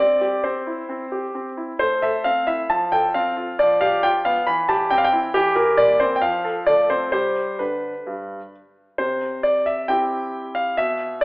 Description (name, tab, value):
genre	classical-period piano sonatina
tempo	134 BPM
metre	4/4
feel	straight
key	C major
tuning	A4 = 440 Hz
part	bright concert grand piano	solo	0.0-11.2 s	G2 to B5	-18 LUFS	equal	none
room	wet recital hall reverb, RT60 1.6 s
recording	telephone sound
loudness	-18 LUFS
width	side -26 dB against mid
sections	0.0-9.0 A section; 9.0-11.2 B section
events	none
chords	0.0 C; 1.8 Am; 2.7 F; 3.6 G7/F; 4.5 C/E; 5.3 C7/E; 6.2 F; 7.1 G; 9.0 C